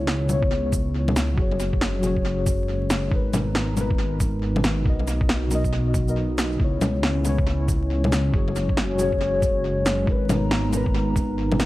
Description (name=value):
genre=future garage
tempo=138 BPM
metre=4/4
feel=swing 63% on 16ths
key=G# minor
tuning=A4 = 440 Hz
part: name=muted felt-like synth keys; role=accompaniment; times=0.0-11.7 s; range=B2 to D#5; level=-28 LUFS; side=left 3 dB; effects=chorus, sidechain pumping, tape echo
part: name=dark analog pad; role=sustained chords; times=0.0-11.7 s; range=G#3 to A#5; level=-29 LUFS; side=right 1 dB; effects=lush chorus, sidechain pumping
part: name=dark detuned saw bass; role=bass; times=0.0-11.7 s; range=F#1 to C#2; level=-25 LUFS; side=equal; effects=sidechain pumping
part: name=electronic snare drum, bongos and shaker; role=drums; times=0.1-11.7 s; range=none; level=-26 LUFS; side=equal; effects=studio reverb, tape echo
part: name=electronic kick drum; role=drums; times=0.4-11.3 s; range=none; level=-24 LUFS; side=equal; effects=studio reverb
room=light reverb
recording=echo-heavy mix, vinyl crackle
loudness=-20 LUFS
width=side -17 dB against mid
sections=0.0-11.7 A section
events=none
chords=0.0 C#m7; 1.4 F#sus2; 3.1 G#madd9; 4.9 Bmaj7; 6.6 C#m7; 8.3 F#sus2; 10.1 G#madd9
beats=0.07 0.51 0.94 | 1.38 1.81 2.25 2.68 | 3.12 3.55 3.99 4.42 | 4.86 5.29 5.73 6.16 | 6.59 7.03 7.46 7.90 | 8.33 8.77 9.20 9.64 | 10.07 10.51 10.94 11.38